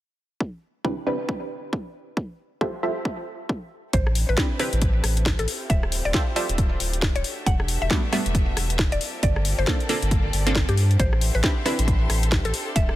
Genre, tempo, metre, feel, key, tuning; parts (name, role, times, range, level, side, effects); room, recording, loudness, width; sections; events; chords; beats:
UK garage, two-step garage; 136 BPM; 4/4; swing 60% on 16ths; A minor; A4 = 441 Hz
electronic kick drum; drums; 0.4-12.9 s; -24 LUFS; equal; overdrive, high-pass filter on kick
punchy chord stab; stabs; 0.8-11.7 s; G3 to E5; -28 LUFS; right 1 dB; chorus, digital delay
mallet-like synth pluck; melody; 3.9-13.0 s; G4 to F#5; -30 LUFS; equal; chorus, cassette tape, digital delay
dark studio violin section; sustained chords; 3.9-13.0 s; A3 to B4; -36 LUFS; right 2 dB; vintage 12-bit sampler grit, sidechain pumping
saturated sub bass; bass; 3.9-13.0 s; D1 to G2; -23 LUFS; equal
house drum kit; drums; 3.9-13.0 s; hi-hat, rim click, snare drum; -27 LUFS; left 1 dB; overdrive
clear studio string section; texture; 3.9-13.0 s; D4 to C6; -38 LUFS; left 4 dB; sidechain pumping
light reverb, digital ambience; dense, heavily limited modern master; -21 LUFS; side -15 dB against mid
0.4-3.9 A section; 3.9-13.0 B section
fade-in on string section 3.9-13.0
0.4 Cmaj9; 1.9 Fmaj9; 3.7 N.C.; 3.9 Am11; 5.5 Dm11; 7.2 Em11; 9.0 Gm11; 11.0 Am11
| 0.41 0.85 1.29 1.73 | 2.17 2.61 3.05 3.49 | 3.94 4.38 4.82 5.26 | 5.70 6.14 6.58 7.02 | 7.46 7.91 8.35 8.79 | 9.23 9.67 10.11 10.55 | 10.99 11.44 11.88 12.32 | 12.76